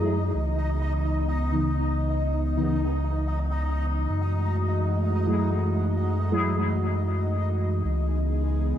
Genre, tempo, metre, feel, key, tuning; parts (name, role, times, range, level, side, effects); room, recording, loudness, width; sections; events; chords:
dub techno; 128 BPM; 4/4; straight; C# minor; A4 = 440 Hz
airy breathy pad; sustained chords; 0.0-8.8 s; C#3 to F#4; -31 LUFS; equal; chorus
resonant sweep polysynth; stabs; 0.0-6.5 s; C#3 to G#4; -29 LUFS; equal; chorus, phaser, dub echo
warm sub bass; bass; 0.0-8.7 s; C#2 to F#2; -25 LUFS; equal; tube saturation
bubbling stepped-filter texture; texture; 0.0-8.8 s; G#3 to D#5; -33 LUFS; left 2 dB; chorus, built-in reverb
light reverb; echo-heavy mix; -23 LUFS; side -10 dB against mid
0.0-7.8 A section
filter sweep on analog polysynth 0.0-7.8; filter sweep on analog synth pad 0.0-7.8
0.3 C#m9; 4.1 F#m9; 7.8 C#m9